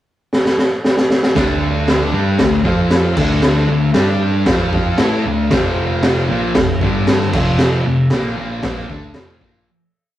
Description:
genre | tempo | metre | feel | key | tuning
garage rock duo or trio | 115 BPM | 4/4 | straight | unclear | A4 = 439 Hz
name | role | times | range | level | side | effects
raw garage drum kit | drums | 0.3-9.5 s | crash cymbal, kick drum, snare drum | -16 LUFS | equal | none
thick fuzz guitar | riff | 1.4-9.7 s | F2 to A4 | -17 LUFS | equal | distortion
hollow-body short-scale picked electric bass | bass | 1.4-9.7 s | F1 to A2 | -21 LUFS | equal | none
room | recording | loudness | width
moderate studio reverb, RT60 0.6 s | rough rehearsal-room recording | -13 LUFS | side -13 dB against mid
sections
0.0-1.4 pickup bar; 1.4-9.7 riff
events
drum fill 0.3-1.4; fade-out 7.6-9.7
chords
0.0 N.C.; 1.4 D5; 2.7 F5; 3.2 D5; 4.0 G5; 4.5 F5; 5.0 D5; 5.5 F5; 6.8 G5; 7.3 F5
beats
0.33 0.84 | 1.36 1.88 2.40 2.91 | 3.43 3.95 4.47 4.99 | 5.51 6.04 6.56 7.08 | 7.60 8.12 8.64 9.16

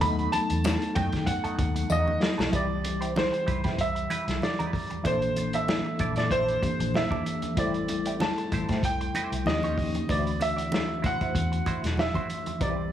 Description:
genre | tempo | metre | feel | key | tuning
lush 1970s-style soul | 95 BPM | 4/4 | swing 54% on 16ths | unclear | A4 = 440 Hz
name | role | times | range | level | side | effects
bright grand piano | melody | 0.0-12.9 s | C5 to B5 | -30 LUFS | right 1 dB | none
mellow tine electric piano | accompaniment | 0.0-12.9 s | E3 to A4 | -32 LUFS | left 3 dB | medium stereo tremolo
semi-hollow electric guitar | riff | 0.0-12.8 s | A3 to E5 | -37 LUFS | right 4 dB | wah, spring reverb
vintage muted fingered electric bass | bass | 0.0-12.9 s | E1 to D#3 | -31 LUFS | left 1 dB | none
vintage drum kit | drums | 0.0-12.8 s | hi-hat, kick drum, snare drum | -30 LUFS | equal | none
congas | percussion | 0.0-12.8 s | none | -37 LUFS | right 5 dB | none
tambourine | percussion | 0.6-2.1 s | none | -44 LUFS | left 12 dB | none
room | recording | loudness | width
light reverb | small room ambience | -24 LUFS | side -10 dB against mid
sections
0.0-2.5 A section; 2.5-12.9 B section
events
drum fill 1.9-2.5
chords
0.0 B7; 2.5 Cmaj7; 5.1 Bbmaj9#11; 7.6 Am7; 9.5 D#9; 10.1 D9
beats
| 0.02 0.64 1.27 1.90 | 2.53 3.16 3.79 4.42 | 5.05 5.68 6.31 6.94 | 7.57 8.20 8.83 9.46 | 10.09 10.72 11.35 11.98 | 12.61

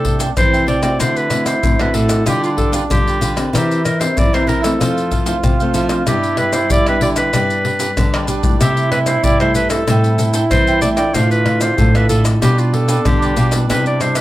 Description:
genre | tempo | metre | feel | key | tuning
samba and choro | 95 BPM | 4/4 | straight | C major | A4 = 439 Hz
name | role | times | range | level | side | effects
bright clarinet | melody | 0.0-14.2 s | F4 to D5 | -19 LUFS | equal | none
warm trombone | second line | 0.0-14.2 s | C4 to A4 | -22 LUFS | right 3 dB | none
cavaquinho | accompaniment | 0.0-14.2 s | D4 to G5 | -25 LUFS | right 4 dB | none
nylon-string guitar | accompaniment | 0.0-14.2 s | F2 to G4 | -24 LUFS | left 2 dB | none
nylon-string guitar | bass | 0.0-14.2 s | A2 to A3 | -18 LUFS | equal | none
surdo, pandeiro, maracas and tamborim | percussion | 0.0-14.2 s | none | -18 LUFS | left 2 dB | none
room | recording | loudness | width
light reverb | close, detailed microphones | -13 LUFS | side -15 dB against mid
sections
0.0-14.2 A section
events
drum fill 8.1-8.6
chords
0.0 Am7/C; 1.0 D7; 2.3 G7/D; 3.5 C7/E; 4.8 Fmaj7; 6.1 G; 8.6 C6; 9.9 Am7; 11.2 Dmadd9/A; 12.4 G7/B; 13.7 Cmaj7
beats
0.37 | 1.00 1.64 2.27 2.90 | 3.54 4.17 4.81 5.44 | 6.07 6.71 7.34 7.97 | 8.61 9.24 9.88 10.52 | 11.15 11.79 12.42 13.06 | 13.70

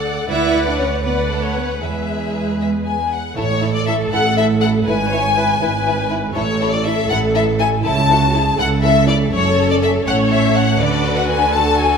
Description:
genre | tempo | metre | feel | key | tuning
quick classical-period movement for string orchestra | 81 BPM (dotted quarters) | 6/8 | straight | A major | A4 = 440 Hz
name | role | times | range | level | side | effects
rich studio violin section | melody | 0.0-12.0 s | C#5 to A5 | -19 LUFS | left 5 dB | none
warm studio viola section | accompaniment | 0.0-12.0 s | E4 to D5 | -23 LUFS | equal | none
rich studio double bass section | bass | 0.0-12.0 s | F#1 to E2 | -22 LUFS | right 5 dB | none
rich studio violin section | second line | 0.3-12.0 s | C#4 to E5 | -24 LUFS | left 3 dB | none
warm studio cello section | bass | 0.3-12.0 s | F#2 to E4 | -21 LUFS | right 4 dB | none
room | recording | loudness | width
moderate scoring stage reverb, RT60 1.9 s | minimal, uncompressed stereo recording | -14 LUFS | side -6 dB against mid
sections
0.0-3.4 A section; 3.4-12.0 B section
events
none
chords
0.3 Bm/D; 1.8 E; 3.4 A5; 4.9 E/G#; 6.3 A5; 7.8 A/C#; 9.3 F#m; 10.1 A; 10.8 D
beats
| 0.29 1.05 | 1.82 2.59 | 3.36 4.12 | 4.86 5.60 | 6.35 7.10 | 7.84 8.58 | 9.32 10.05 | 10.79 11.52

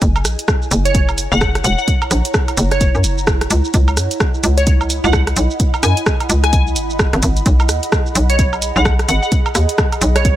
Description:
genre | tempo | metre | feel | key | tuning
UK garage, two-step garage | 129 BPM | 4/4 | swing 60% on 16ths | B major | A4 = 440 Hz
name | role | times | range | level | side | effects
hollow knocking FM bass | bass | 0.0-10.3 s | E1 to F#2 | -16 LUFS | equal | none
electronic kick drum | drums | 0.0-10.4 s | none | -16 LUFS | equal | none
garage drum kit | drums | 0.0-10.4 s | hi-hat, rim click, shaker, woodblock | -19 LUFS | right 1 dB | none
ethereal airy pad | texture | 0.0-10.4 s | E4 to B5 | -24 LUFS | right 2 dB | ensemble chorus, built-in reverb, sidechain pumping
glassy wavetable pluck | melody | 0.9-10.4 s | C#5 to G#5 | -21 LUFS | left 1 dB | chorus, tape echo
room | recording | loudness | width
digital ambience | none | -13 LUFS | side -13 dB against mid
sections
0.0-10.4 A section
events
none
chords
0.0 F#7; 3.5 C#m11; 7.5 B6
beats
| 0.02 0.48 0.95 1.41 | 1.88 2.34 2.81 3.27 | 3.74 4.20 4.67 5.13 | 5.60 6.06 6.53 6.99 | 7.46 7.92 8.39 8.85 | 9.32 9.78 10.25

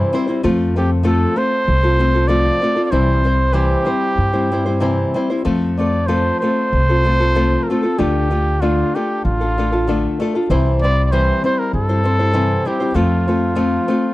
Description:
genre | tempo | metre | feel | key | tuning
mexican folk, mariachi | 96 BPM | 4/4 | rubato | F major | A4 = 440 Hz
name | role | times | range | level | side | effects
clear trumpet | melody | 0.0-14.1 s | E4 to D5 | -20 LUFS | right 1 dB | none
nylon-string guitar | accompaniment | 0.0-14.1 s | C3 to C5 | -18 LUFS | left 2 dB | none
upright bass | bass | 0.4-13.8 s | A1 to G2 | -18 LUFS | equal | tube saturation
room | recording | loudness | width
studio ambience | dry, close 1970s-style studio recording | -14 LUFS | side -17 dB against mid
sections
0.0-14.1 A section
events
none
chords
0.4 F; 2.9 C; 5.5 F; 8.0 Dm; 10.5 C; 12.9 F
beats
| 0.43 1.04 1.67 2.29 | 2.91 3.54 4.17 4.81 | 5.45 6.09 6.72 7.36 | 7.99 8.62 9.24 9.87 | 10.49 11.10 11.72 12.33 | 12.95 13.57

